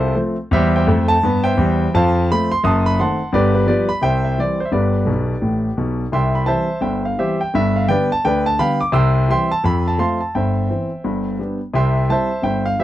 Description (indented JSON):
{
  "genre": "jazz, stride piano",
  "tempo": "171 BPM",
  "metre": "4/4",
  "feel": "swing 61% on 8ths",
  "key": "C major",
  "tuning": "A4 = 440 Hz",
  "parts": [
    { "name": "clear concert grand piano", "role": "solo", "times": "0.0-12.8 s", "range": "F#1 to E6", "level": "-15 LUFS", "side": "equal", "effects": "none" }
  ],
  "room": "moderate booth ambience, RT60 0.2 s",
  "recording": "dry, close 1970s-style studio recording",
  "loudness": "-15 LUFS",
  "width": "side -13 dB against mid",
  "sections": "0.0-6.1 A section; 6.1-12.8 B section",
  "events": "grand piano fill 5.1-6.1",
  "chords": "0.0 F; 0.5 C/E; 1.9 F; 2.6 F#dim7; 3.3 G7; 4.0 C; 4.7 G; 6.1 C; 7.5 G7; 8.9 C; 9.6 F; 10.3 C/G; 11.0 G; 11.7 C",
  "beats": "0.17 | 0.53 0.88 1.23 1.58 | 1.93 2.28 2.63 2.98 | 3.33 3.68 4.03 4.38 | 4.73 5.08 5.43 5.78 | 6.13 6.48 6.83 7.18 | 7.53 7.88 8.23 8.58 | 8.93 9.28 9.63 9.98 | 10.33 10.68 11.03 11.38 | 11.73 12.08 12.43 12.78"
}